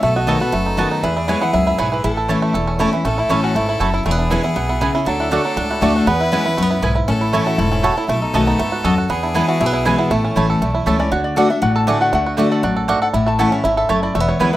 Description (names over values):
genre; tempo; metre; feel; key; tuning
bluegrass; 238 BPM; 4/4; straight; A major; A4 = 440 Hz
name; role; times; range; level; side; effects
bluegrass banjo; melody; 0.0-14.6 s; E3 to A4; -21 LUFS; right 4 dB; none
lap resonator guitar; melody; 0.0-14.6 s; A3 to A5; -23 LUFS; left 2 dB; none
bright fiddle; second line; 0.0-11.0 s; E4 to B4; -26 LUFS; left 3 dB; none
picked steel-string acoustic guitar; accompaniment; 0.0-14.6 s; E2 to F#4; -19 LUFS; left 2 dB; none
upright bass; bass; 0.0-14.6 s; E1 to E2; -24 LUFS; equal; none
mandolin; stabs; 0.3-14.5 s; A3 to A5; -23 LUFS; right 4 dB; analog delay
room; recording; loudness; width
light reverb; rough home demo mix; -15 LUFS; side -14 dB against mid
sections
0.0-3.0 A section; 3.0-11.1 A section; 11.1-14.6 B section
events
none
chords
0.0 B7; 1.0 E; 2.0 A; 4.1 E; 5.1 D; 6.1 E; 7.1 A; 8.1 B7; 9.1 E; 10.1 A; 11.1 D; 13.1 A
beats
| 0.02 0.27 0.53 0.78 | 1.03 1.28 1.53 1.79 | 2.04 2.29 2.54 2.79 | 3.05 3.30 3.55 3.80 | 4.05 4.31 4.56 4.81 | 5.06 5.32 5.57 5.82 | 6.07 6.32 6.58 6.83 | 7.08 7.33 7.59 7.84 | 8.09 8.34 8.60 8.85 | 9.10 9.35 9.61 9.86 | 10.11 10.36 10.62 10.87 | 11.12 11.37 11.62 11.88 | 12.13 12.38 12.63 12.89 | 13.14 13.39 13.64 13.90 | 14.15 14.40